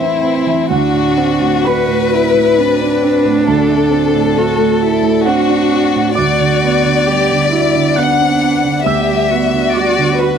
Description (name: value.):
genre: neoclassical piano and strings.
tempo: 67 BPM.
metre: 3/4.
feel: rubato.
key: unclear.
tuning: A4 = 439 Hz.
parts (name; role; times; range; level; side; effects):
warm chamber violin section; melody; 0.0-10.4 s; E4 to F#5; -14 LUFS; left 8 dB; none.
dark cello; second line; 0.0-10.4 s; C4 to G4; -17 LUFS; right 2 dB; none.
warm grand piano; accompaniment; 0.0-10.4 s; D2 to F#6; -16 LUFS; right 9 dB; none.
warbly tape-like pad; sustained chords; 0.0-10.4 s; A3 to F#5; -25 LUFS; left 3 dB; chorus, built-in reverb.
room: light reverb.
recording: dry, close 1970s-style studio recording.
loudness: -11 LUFS.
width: side -7 dB against mid.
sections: 0.0-10.4 A section.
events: none.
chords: 0.0 Amadd9; 0.7 D7; 6.2 Gmaj7/D.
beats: | 0.71 1.65 2.57 | 3.47 4.37 5.25 | 6.17 7.08 7.97 | 8.86 9.75.